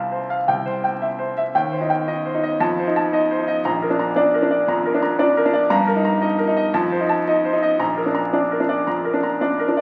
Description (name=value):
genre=classical, virtuoso piano study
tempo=114 BPM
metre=4/4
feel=rubato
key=Bb major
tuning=A4 = 442 Hz
part: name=clear grand piano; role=solo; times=0.0-9.8 s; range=Bb1 to Bb5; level=-20 LUFS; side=equal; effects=none
room=wet recital hall reverb, RT60 1.3 s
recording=very old 78 rpm record, vinyl crackle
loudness=-20 LUFS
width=mono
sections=0.0-9.8 A section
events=none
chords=0.5 C; 1.5 Cm/Eb; 2.6 F7; 3.6 Bb; 5.7 Eb/G; 6.7 F7; 7.8 Bb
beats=0.47 1.01 | 1.55 2.08 2.60 3.13 | 3.65 4.17 4.68 5.20 | 5.71 6.22 6.74 7.27 | 7.80 8.34 8.88 9.42